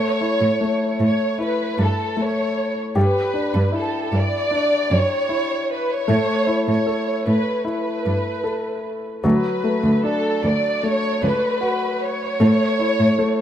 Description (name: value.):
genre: pop ballad.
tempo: 76 BPM.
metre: 4/4.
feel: straight.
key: unclear.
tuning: A4 = 441 Hz.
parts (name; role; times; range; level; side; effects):
warm studio violin section; melody; 0.0-13.4 s; A4 to D5; -22 LUFS; right 1 dB; none.
clear grand piano; accompaniment; 0.0-13.4 s; F#3 to A4; -23 LUFS; left 2 dB; none.
muted cello; bass; 0.4-13.1 s; C#2 to A2; -19 LUFS; right 1 dB; none.
room: moderate plate reverb, RT60 3.6 s.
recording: rough home demo mix.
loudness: -18 LUFS.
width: side -10 dB against mid.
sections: 0.0-13.4 A section.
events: none.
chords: 0.0 A; 3.0 G6; 6.1 Asus2; 9.2 D; 12.4 A.